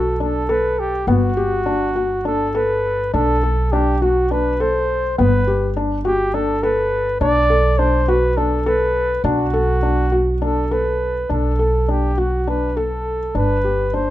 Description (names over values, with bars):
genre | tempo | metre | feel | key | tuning
contemporary instrumental, contemporary | 205 BPM (eighths) | 7/8 | straight | B phrygian | A4 = 441 Hz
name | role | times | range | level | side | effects
mellow flugelhorn | melody | 0.0-14.1 s | F#4 to D5 | -21 LUFS | equal | none
felt-muted upright piano | arpeggios | 0.0-14.1 s | B3 to A4 | -20 LUFS | left 2 dB | none
upright bass | bass | 0.0-14.1 s | G1 to B1 | -21 LUFS | right 1 dB | none
room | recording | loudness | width
light reverb | close, detailed microphones | -16 LUFS | side -14 dB against mid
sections
0.0-11.3 A section; 11.3-14.1 A section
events
none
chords
0.0 Bm7; 1.1 Gmaj7; 3.1 Bm7; 5.2 G; 7.2 Bm7; 13.4 G